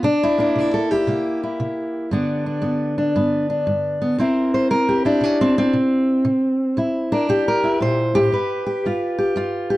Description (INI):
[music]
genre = acoustic country blues, solo or duo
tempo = 116 BPM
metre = 4/4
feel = swing 65% on 8ths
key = unclear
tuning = A4 = 441 Hz
[part]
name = fingerpicked steel-string acoustic guitar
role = solo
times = 0.0-9.8 s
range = G2 to C5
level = -17 LUFS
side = equal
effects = none
[sound]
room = studio reverb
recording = dry, close 1970s-style studio recording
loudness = -17 LUFS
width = side -17 dB against mid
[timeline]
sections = 0.0-9.8 A section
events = none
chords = 0.0 C7; 2.1 G; 4.2 C7; 8.3 G7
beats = | 0.04 0.56 1.08 1.60 | 2.12 2.64 3.15 3.67 | 4.19 4.71 5.23 5.74 | 6.26 6.78 7.29 7.81 | 8.32 8.84 9.35